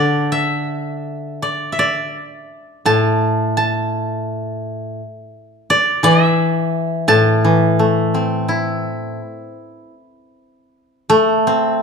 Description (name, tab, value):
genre	chinese traditional, Chinese solo plucked strings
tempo	75-88 BPM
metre	4/4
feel	rubato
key	A yu mode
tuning	A4 = 440 Hz
part	steel-string zither	solo	0.0-11.8 s	A2 to A5	-15 LUFS	equal	none
room	moderate recital hall reverb, RT60 1.4 s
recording	minimal, uncompressed stereo recording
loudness	-15 LUFS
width	side -5 dB against mid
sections	0.0-11.5 A section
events	none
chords	none